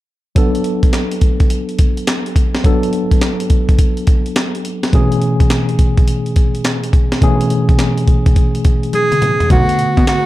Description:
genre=R&B, new jack swing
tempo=105 BPM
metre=4/4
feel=swing 65% on 16ths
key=B dorian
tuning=A4 = 440 Hz
part: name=tine electric piano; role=accompaniment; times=0.4-10.3 s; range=B2 to A4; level=-17 LUFS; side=left 1 dB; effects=medium stereo tremolo
part: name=breakbeat sampler-style drum kit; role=drums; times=0.4-10.3 s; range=handclaps, hi-hat, kick drum, snare drum, toms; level=-13 LUFS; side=equal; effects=none
part: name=breathy tenor saxophone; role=melody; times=8.9-10.3 s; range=F#4 to G#4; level=-14 LUFS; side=right 1 dB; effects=none
part: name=fat analog bass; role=bass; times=9.5-10.1 s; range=B1 to B2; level=-15 LUFS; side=equal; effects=none
room=digital ambience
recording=dark, warm production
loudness=-12 LUFS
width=side -16 dB against mid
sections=0.4-9.5 A section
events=drum fill 8.9-9.5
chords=0.4 Bm7; 4.9 Amaj7/B; 9.5 Bm7

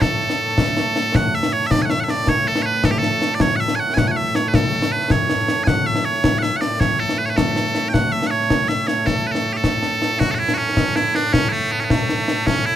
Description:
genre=scottish traditional, Scottish pipe music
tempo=106 BPM (dotted quarters)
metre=6/8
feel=straight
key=A major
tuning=A4 = 445 Hz
part: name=loud bright bagpipes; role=melody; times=0.0-12.8 s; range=A2 to G#5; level=-19 LUFS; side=right 2 dB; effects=none
part: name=concert snare drum and concert bass drum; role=drums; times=0.0-12.6 s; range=none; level=-20 LUFS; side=left 2 dB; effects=none
room=little or no reverb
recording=none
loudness=-16 LUFS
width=side -11 dB against mid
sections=0.0-1.1 A section; 1.1-10.2 B section; 10.2-12.8 B section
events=none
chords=none

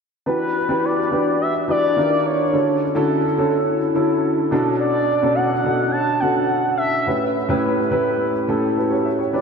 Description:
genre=pop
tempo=106 BPM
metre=4/4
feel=straight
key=E dorian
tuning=A4 = 440 Hz
part: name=expressive portamento lead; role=melody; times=0.3-9.4 s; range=B4 to A5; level=-21 LUFS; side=left 1 dB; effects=chorus, ping-pong delay
part: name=warm grand piano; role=accompaniment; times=0.3-9.4 s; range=A2 to E5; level=-18 LUFS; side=equal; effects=lush chorus
room=wet lush hall reverb, RT60 2.8 s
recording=dreamy mix soaked in reverb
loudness=-17 LUFS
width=side -5 dB against mid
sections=0.3-9.4 A section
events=none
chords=0.3 Em7; 2.0 D#maj7; 2.5 Dmaj7; 4.5 Bm7; 7.1 A7

